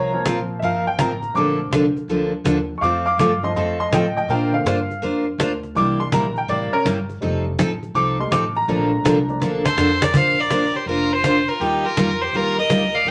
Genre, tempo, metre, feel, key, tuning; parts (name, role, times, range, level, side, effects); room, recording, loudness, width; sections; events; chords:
country, western swing; 164 BPM; 4/4; swing 65% on 8ths; Bb major; A4 = 440 Hz
clear upright piano; accompaniment; 0.0-9.6 s; D3 to D6; -24 LUFS; equal
picked steel-string acoustic guitar; accompaniment; 0.0-13.1 s; C3 to C5; -24 LUFS; equal
upright bass; bass; 0.0-13.1 s; F1 to Bb2; -31 LUFS; equal
cajon; drums; 0.3-13.1 s; -25 LUFS; equal
clear fiddle; melody; 9.6-13.1 s; G4 to F5; -22 LUFS; equal
clear fiddle; second line; 9.7-13.1 s; Eb4 to D5; -30 LUFS; equal
wet club reverb, RT60 0.7 s; -20 LUFS; mono
0.0-10.1 A section; 10.1-13.1 B section
upright piano solo 0.0-10.1; drum fill 9.4-10.1
0.0 Fsus4; 1.4 Bbmaj7; 2.8 F; 4.3 Bbadd9; 5.8 C7; 7.2 F7; 8.7 Bbmaj7; 10.1 Bbadd9; 11.6 Ebadd9